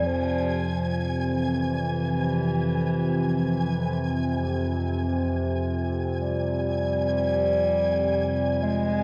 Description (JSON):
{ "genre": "dark ambient drone", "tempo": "49 BPM", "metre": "4/4", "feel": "straight", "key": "F harmonic minor", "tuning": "A4 = 438 Hz", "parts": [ { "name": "mellow bass clarinet", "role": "melody", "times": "0.0-9.0 s", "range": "E3 to Ab3", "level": "-29 LUFS", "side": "equal", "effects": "delay" }, { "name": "analog drone", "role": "drone", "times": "0.0-9.0 s", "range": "F2 to C3", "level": "-28 LUFS", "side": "equal", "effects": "chorus" }, { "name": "flickering grainy texture", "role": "texture", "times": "0.0-9.0 s", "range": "Ab5", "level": "-38 LUFS", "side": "equal", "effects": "built-in reverb" } ], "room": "wet huge ambient reverb, RT60 8.1 s", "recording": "cassette tape", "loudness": "-25 LUFS", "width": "mono", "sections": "0.0-9.0 A section", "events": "none", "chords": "0.0 F5" }